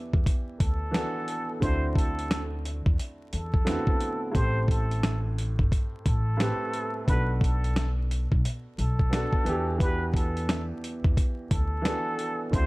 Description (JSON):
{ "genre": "hip hop, boom-bap hip-hop", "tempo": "88 BPM", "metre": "4/4", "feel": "swing 62% on 16ths", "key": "A dorian", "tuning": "A4 = 440 Hz", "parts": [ { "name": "warm baby grand piano", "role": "accompaniment", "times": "0.0-12.7 s", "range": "A2 to C5", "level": "-33 LUFS", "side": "right 1 dB", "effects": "cassette tape, high-pass filter, low-pass filter" }, { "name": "upright bass", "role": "bass", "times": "0.1-12.7 s", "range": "G1 to E2", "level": "-29 LUFS", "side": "equal", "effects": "none" }, { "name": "dusty soul sampler-style drum kit", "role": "drums", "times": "0.1-12.7 s", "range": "hi-hat, kick drum, snare drum", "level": "-26 LUFS", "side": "equal", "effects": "none" }, { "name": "trumpet with plunger mute", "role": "melody", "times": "0.6-12.7 s", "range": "A4 to C5", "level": "-34 LUFS", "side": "equal", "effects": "high-pass filter, low-pass filter, slapback echo" } ], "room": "small room ambience", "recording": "dark, warm production, vinyl crackle", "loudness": "-24 LUFS", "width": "side -22 dB against mid", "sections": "0.0-4.3 A section; 4.3-12.7 B section", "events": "none", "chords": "0.0 Em7; 1.6 D13; 4.3 Am9; 7.1 Bm7; 9.5 Em7" }